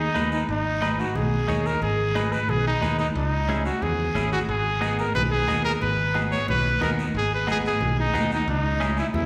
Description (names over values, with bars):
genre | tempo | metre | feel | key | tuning
latin, cumbia | 180 BPM | 4/4 | straight | G# minor | A4 = 440 Hz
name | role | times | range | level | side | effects
clear trumpet | melody | 0.0-9.3 s | D#4 to C#5 | -27 LUFS | equal | none
modern bright picked electric bass | bass | 0.0-9.3 s | G#1 to E2 | -29 LUFS | equal | none
semi-hollow electric guitar | accompaniment | 0.1-9.0 s | B3 to C#5 | -34 LUFS | equal | none
congas | percussion | 0.2-9.3 s | none | -33 LUFS | equal | none
guiro | percussion | 0.2-9.3 s | none | -41 LUFS | equal | none
room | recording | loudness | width
wet recital hall reverb, RT60 1.7 s | recorded in a church or concert hall | -24 LUFS | mono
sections
0.5-9.3 A section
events
none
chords
0.5 G#m; 3.2 C#m; 4.5 G#m; 8.5 C#m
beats
0.16 | 0.49 0.82 1.16 1.49 | 1.82 2.15 2.49 2.82 | 3.15 3.49 3.82 4.15 | 4.49 4.82 5.15 5.48 | 5.82 6.15 6.48 6.82 | 7.15 7.48 7.81 8.14 | 8.48 8.81 9.14